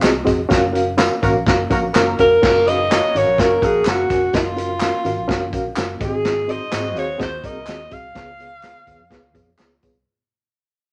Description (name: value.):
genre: uptempo 1960s-style soul.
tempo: 125 BPM.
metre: 4/4.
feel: straight.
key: F# major.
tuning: A4 = 439 Hz.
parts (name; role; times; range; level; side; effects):
reed electric piano; accompaniment; 0.0-10.0 s; G#2 to G#5; -24 LUFS; equal; fast tremolo.
vintage muted fingered electric bass; bass; 0.0-10.0 s; E#1 to G#2; -31 LUFS; equal; none.
vintage drum kit; drums; 0.0-9.9 s; crash cymbal, hi-hat, kick drum, snare drum; -24 LUFS; equal; none.
handclaps and tambourine; percussion; 0.0-9.9 s; none; -30 LUFS; equal; none.
mellow horn section; second line; 1.2-7.9 s; A#3 to D#5; -27 LUFS; equal; none.
breathy alto saxophone; melody; 2.2-9.6 s; E#4 to E#5; -21 LUFS; equal; none.
room: moderate studio reverb, RT60 0.6 s.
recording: none.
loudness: -18 LUFS.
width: mono.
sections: 0.0-2.4 A section; 2.4-10.1 B section.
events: band accent 0.5-2.4; fade-out 2.4-10.1.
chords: 0.0 G#7; 0.5 F#maj7; 6.0 G#7; 8.2 C#7.